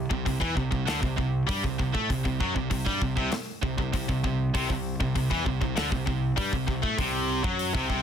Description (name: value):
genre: heavy metal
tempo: 98 BPM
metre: 4/4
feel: straight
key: unclear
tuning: A4 = 438 Hz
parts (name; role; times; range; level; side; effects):
- scooped high-gain guitar; riff; 0.0-8.0 s; C3 to A3; -30 LUFS; right 10 dB; distortion
- tight distorted guitar; riff; 0.0-8.0 s; C3 to A3; -30 LUFS; left 12 dB; distortion
- fuzz picked electric bass; bass; 0.0-8.0 s; C2 to A2; -33 LUFS; equal; overdrive
- modern studio drum kit; drums; 0.1-8.0 s; hi-hat, kick drum, snare drum; -31 LUFS; equal; none
room: little or no reverb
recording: dense, heavily limited modern master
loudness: -25 LUFS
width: side -8 dB against mid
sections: 0.0-8.0 A section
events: none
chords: 0.0 C5